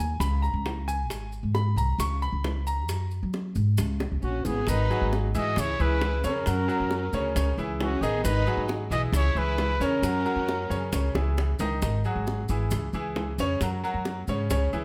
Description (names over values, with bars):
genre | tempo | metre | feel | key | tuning
latin, Cuban son and guajira | 134 BPM | 4/4 | straight | unclear | A4 = 441 Hz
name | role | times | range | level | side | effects
bright grand piano | arpeggios | 0.0-14.8 s | C#3 to C#6 | -33 LUFS | equal | none
upright bass | bass | 0.0-14.8 s | G#1 to F#3 | -29 LUFS | equal | none
maracas | percussion | 0.0-14.8 s | none | -45 LUFS | equal | none
bongos | percussion | 0.2-14.8 s | none | -37 LUFS | equal | none
breathy trumpet | melody | 4.2-11.2 s | F#4 to D#5 | -32 LUFS | equal | none
clear chamber violin section | second line | 4.2-11.2 s | B3 to F#4 | -36 LUFS | equal | none
room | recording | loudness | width
light reverb | none | -27 LUFS | mono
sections
0.0-4.7 A section; 4.7-14.8 B section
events
grand piano solo 0.0-4.7; drum fill 4.0-4.7, 11.2-11.8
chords
0.2 A#m7/C#; 1.1 G#madd9; 2.0 A#m/C#; 2.9 F#add9; 3.8 C#5; 4.7 G#m7; 5.6 C#m; 6.5 F#; 7.4 C#m; 8.2 G#m7; 9.1 C#m; 10.0 F#; 10.9 C#m; 11.8 G#5; 12.7 C#m; 13.6 F#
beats
0.21 0.65 | 1.10 1.55 1.99 2.44 | 2.89 3.33 3.78 4.23 | 4.67 5.12 5.57 6.01 | 6.46 6.91 7.35 7.80 | 8.25 8.69 9.14 9.59 | 10.03 10.48 10.93 11.37 | 11.82 12.27 12.71 13.16 | 13.61 14.06 14.50